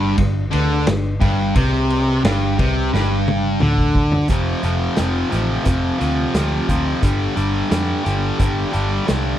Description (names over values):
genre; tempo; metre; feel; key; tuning
blues rock power trio and southern rock; 88 BPM; 4/4; straight; unclear; A4 = 440 Hz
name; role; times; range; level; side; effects
sludgy distorted guitar; riff; 0.0-9.4 s; F2 to G3; -19 LUFS; equal; overdrive
vintage muted picked electric bass; bass; 0.0-9.3 s; F1 to F2; -21 LUFS; equal; none
vintage drum kit; drums; 0.2-9.2 s; hi-hat, kick drum, ride cymbal, snare drum, toms; -22 LUFS; equal; none
room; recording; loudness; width
little or no reverb; none; -16 LUFS; side -11 dB against mid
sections
0.0-4.3 A section; 4.3-9.4 B section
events
drum fill 2.9-4.3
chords
0.0 G5; 4.3 F5; 7.0 G5